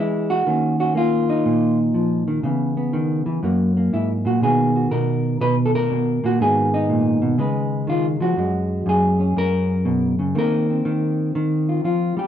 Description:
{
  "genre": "solo jazz",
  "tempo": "121 BPM",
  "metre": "4/4",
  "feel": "swing 66% on 8ths",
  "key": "Eb minor",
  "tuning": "A4 = 438 Hz",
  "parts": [
    { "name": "hollow-body jazz guitar", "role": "solo", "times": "0.0-12.3 s", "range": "Gb2 to Cb5", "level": "-18 LUFS", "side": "equal", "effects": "none" }
  ],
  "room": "moderate large studio reverb, RT60 1.0 s",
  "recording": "dark, warm production",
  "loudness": "-18 LUFS",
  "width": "side -10 dB against mid",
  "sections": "0.0-4.4 A section; 4.4-12.3 B section",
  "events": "none",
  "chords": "0.4 Ebsus2; 2.4 Dbm7; 3.4 Gb; 4.4 Bmaj7; 6.4 Abm7; 7.4 Db9; 8.4 Gbadd9; 10.3 Ebsus2"
}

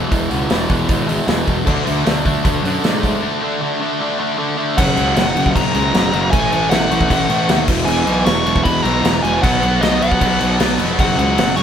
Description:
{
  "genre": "punk rock",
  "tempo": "155 BPM",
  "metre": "4/4",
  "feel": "straight",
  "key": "unclear",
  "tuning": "A4 = 440 Hz",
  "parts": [
    { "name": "sludgy distorted guitar", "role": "riff", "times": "0.0-11.6 s", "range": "E2 to D4", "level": "-18 LUFS", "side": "equal", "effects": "overdrive" },
    { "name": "fuzz picked electric bass", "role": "bass", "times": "0.1-11.6 s", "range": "E1 to G#2", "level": "-20 LUFS", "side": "equal", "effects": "overdrive" },
    { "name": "big rock drum kit", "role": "drums", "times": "0.1-11.6 s", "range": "crash cymbal, hi-hat, kick drum, snare drum", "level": "-18 LUFS", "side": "equal", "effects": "none" },
    { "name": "bluesy overdriven lead guitar", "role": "melody", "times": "4.8-11.6 s", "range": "D#5 to C#6", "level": "-19 LUFS", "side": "equal", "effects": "distortion" }
  ],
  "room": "light reverb",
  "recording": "band playing live in one room",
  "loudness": "-14 LUFS",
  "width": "side -8 dB against mid",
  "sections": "0.0-4.8 A section; 4.8-11.6 B section",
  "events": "break 3.2-4.8",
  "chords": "0.0 E; 1.7 D5; 4.8 F#; 6.3 A5; 7.7 E; 9.4 B5; 11.0 F#5"
}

